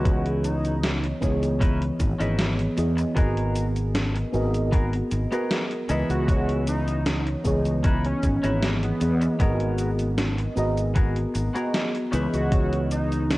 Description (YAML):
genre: vaporwave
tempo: 77 BPM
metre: 4/4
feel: straight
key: unclear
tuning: A4 = 439 Hz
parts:
  - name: warm velvety synth lead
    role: melody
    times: 0.0-1.0, 6.1-13.4 s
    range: B3 to F#4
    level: -31 LUFS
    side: equal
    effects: chorus, cassette tape, tape echo
  - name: mellow FM electric piano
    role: accompaniment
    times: 0.0-13.4 s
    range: E3 to A#5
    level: -26 LUFS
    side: equal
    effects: analog chorus, cassette tape, analog delay
  - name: clean electric guitar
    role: riff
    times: 0.0-13.2 s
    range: B3 to B4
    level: -35 LUFS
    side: left 1 dB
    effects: lush chorus, analog delay
  - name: fretless electric bass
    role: bass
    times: 0.0-13.4 s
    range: G#1 to E2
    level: -26 LUFS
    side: equal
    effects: tube saturation
  - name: electronic kick drum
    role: drums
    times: 0.1-12.7 s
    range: none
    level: -22 LUFS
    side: equal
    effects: none
  - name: gated 80s digital drum machine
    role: drums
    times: 0.1-13.4 s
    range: cabasa, hi-hat, snare drum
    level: -29 LUFS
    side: equal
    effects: gated reverb, gated reverb snare
room: light reverb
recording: worn, warbling old tape, cassette tape, warbly pitch drift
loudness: -21 LUFS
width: side -19 dB against mid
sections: 0.0-13.4 A section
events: none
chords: 0.0 C#m9; 3.2 G#m9; 5.9 C#m9; 9.4 G#m9; 12.1 C#m9